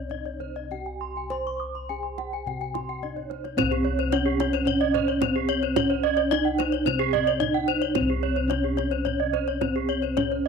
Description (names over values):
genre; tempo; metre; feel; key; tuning
Balinese gamelan; 109 BPM; 4/4; straight; C pelog; A4 = 440 Hz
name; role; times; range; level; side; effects
gamelan-type bronze metallophone; melody; 0.0-10.5 s; C4 to C5; -28 LUFS; right 2 dB; none
gamelan-type bronze metallophone; arpeggios; 0.0-10.3 s; C5 to Db6; -29 LUFS; left 13 dB; none
gamelan-type bossed gongs; bass; 0.0-10.5 s; C2 to C5; -30 LUFS; left 1 dB; none
kendang; percussion; 0.1-10.4 s; none; -32 LUFS; right 10 dB; none
gamelan-type bronze metallophone; arpeggios; 0.4-10.5 s; Ab4-40c to D6+50c; -28 LUFS; right 12 dB; none
room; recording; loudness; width
moderate spring reverb, RT60 1.3 s; 1960s-style stereo with parts hard left and right; -23 LUFS; side -5 dB against mid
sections
0.0-3.6 A section; 3.6-10.5 B section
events
drum fill 3.0-3.6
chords
none